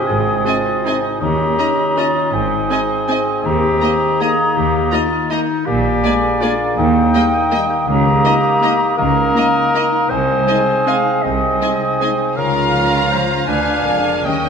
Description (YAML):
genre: classical, orchestral ballroom waltz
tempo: 161 BPM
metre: 3/4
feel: uneven beats, rubato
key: Ab major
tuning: A4 = 445 Hz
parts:
  - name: silver concert flute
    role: second line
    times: 0.0-14.5 s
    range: G5 to Bb5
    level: -22 LUFS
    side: left 2 dB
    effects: none
  - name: warm clarinet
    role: second line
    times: 0.0-14.5 s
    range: Eb4 to F5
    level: -21 LUFS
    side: left 3 dB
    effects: none
  - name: warm oboe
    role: second line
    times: 0.0-14.5 s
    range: D5 to F5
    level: -22 LUFS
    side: right 4 dB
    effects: none
  - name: mellow bassoon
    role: accompaniment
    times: 0.0-14.5 s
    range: Bb3 to D4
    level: -22 LUFS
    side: right 2 dB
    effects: none
  - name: concert harp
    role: arpeggios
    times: 0.0-14.5 s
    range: Ab2 to F5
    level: -24 LUFS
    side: left 9 dB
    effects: none
  - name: rich studio cello section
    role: bass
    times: 0.1-14.5 s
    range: C2 to Bb2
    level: -23 LUFS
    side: right 4 dB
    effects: none
  - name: rich studio double bass section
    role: bass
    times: 0.1-14.5 s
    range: F1 to Eb2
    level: -25 LUFS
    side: right 4 dB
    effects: none
  - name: warm studio violin section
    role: melody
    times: 0.5-14.5 s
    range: G5 to Bb5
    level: -28 LUFS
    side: left 1 dB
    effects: none
  - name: rich studio violin section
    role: second line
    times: 0.5-14.5 s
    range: D5 to F5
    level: -26 LUFS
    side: left 1 dB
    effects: none
  - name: rich studio viola section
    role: accompaniment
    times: 0.5-14.5 s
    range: Bb3 to F4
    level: -26 LUFS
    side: right 1 dB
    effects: none
  - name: mellow French horn section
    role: sustained chords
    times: 0.5-14.4 s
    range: F3 to F4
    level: -27 LUFS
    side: left 4 dB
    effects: none
room: wet scoring stage reverb, RT60 1.9 s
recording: none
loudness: -13 LUFS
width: side -6 dB against mid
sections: 0.0-14.5 A section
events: none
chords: 0.0 Ab; 1.2 Eb7; 2.3 Ab; 3.4 Eb; 5.7 Bb7; 6.8 Eb; 7.9 Eb7/Db; 10.1 Ab/C; 12.4 Bbm/Db; 13.5 Ddim7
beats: | 0.09 0.46 0.85 | 1.21 1.57 1.97 | 2.33 2.69 3.08 | 3.44 3.81 4.20 | 4.56 4.93 5.31 | 5.67 6.04 6.42 | 6.78 7.14 7.52 | 7.88 8.24 8.63 | 8.99 9.36 9.75 | 10.11 10.48 10.87 | 11.24 11.61 12.00 | 12.36 12.73 13.12 | 13.48 13.86 14.26